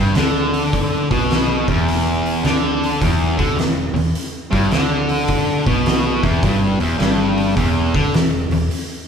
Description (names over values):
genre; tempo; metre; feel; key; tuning
blues rock power trio and southern rock; 105 BPM; 4/4; swing 66% on 8ths; E minor; A4 = 437 Hz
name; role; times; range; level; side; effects
distorted electric guitar; riff; 0.0-8.7 s; E2 to D3; -18 LUFS; equal; distortion
vintage muted fingered electric bass; bass; 0.0-8.7 s; E1 to D2; -24 LUFS; equal; none
oversized low-tuned drum kit; drums; 0.2-8.9 s; hi-hat, kick drum, snare drum; -20 LUFS; equal; none
room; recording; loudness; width
light reverb; band playing live in one room; -15 LUFS; side -7 dB against mid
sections
0.0-9.1 A section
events
none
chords
0.0 Em